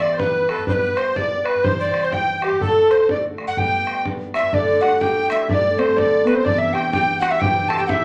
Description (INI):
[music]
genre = celtic folk, Celtic polka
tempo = 125 BPM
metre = 2/4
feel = swing 61% on 8ths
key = G major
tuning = A4 = 439 Hz
[part]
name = breathy alto recorder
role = melody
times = 0.0-8.0 s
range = G4 to A5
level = -22 LUFS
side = equal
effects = none
[part]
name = musette accordion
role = second line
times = 0.0-8.0 s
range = G4 to A5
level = -27 LUFS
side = equal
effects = none
[part]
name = fingerpicked twelve-string acoustic guitar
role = accompaniment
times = 0.0-8.0 s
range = D2 to G4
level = -25 LUFS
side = equal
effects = none
[part]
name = bodhran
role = percussion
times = 0.0-8.0 s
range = none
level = -28 LUFS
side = equal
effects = none
[part]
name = Celtic harp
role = second line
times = 4.3-8.0 s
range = B3 to A4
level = -29 LUFS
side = equal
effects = none
[sound]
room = wet club reverb, RT60 0.6 s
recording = none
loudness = -19 LUFS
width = mono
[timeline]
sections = 0.0-4.5 A section; 4.5-8.0 B section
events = none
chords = 0.0 Em; 0.7 G; 1.6 C; 2.6 D; 3.6 G; 4.5 Gsus2; 6.5 Cadd9